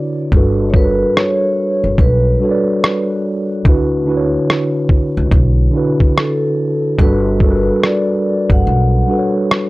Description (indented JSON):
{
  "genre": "lo-fi hip hop",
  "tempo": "72 BPM",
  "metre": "4/4",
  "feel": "swing 63% on 16ths",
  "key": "unclear",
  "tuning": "A4 = 438 Hz",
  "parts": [
    { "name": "mellow tine electric piano", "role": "accompaniment", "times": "0.0-9.7 s", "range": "D3 to D5", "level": "-16 LUFS", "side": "equal", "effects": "medium stereo tremolo, cassette tape" },
    { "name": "upright bass", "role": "bass", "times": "0.3-9.0 s", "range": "G1 to D2", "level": "-16 LUFS", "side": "equal", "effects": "none" },
    { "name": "lo-fi sampler-style drum kit", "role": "drums", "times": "0.3-9.7 s", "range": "kick drum, rim click", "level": "-12 LUFS", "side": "equal", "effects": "vintage 12-bit sampler grit" },
    { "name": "vibraphone with soft mallets", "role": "melody", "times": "0.7-9.3 s", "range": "A4 to F#5", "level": "-20 LUFS", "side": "equal", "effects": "tape echo" }
  ],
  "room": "light reverb",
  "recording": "dry, gritty hardware recording",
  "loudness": "-12 LUFS",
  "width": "side -20 dB against mid",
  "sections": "0.0-9.7 A section",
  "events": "break 0.0-9.7; kick muted 8.7-9.7",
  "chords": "0.3 Gmaj7; 3.7 D6; 7.0 Gmaj7"
}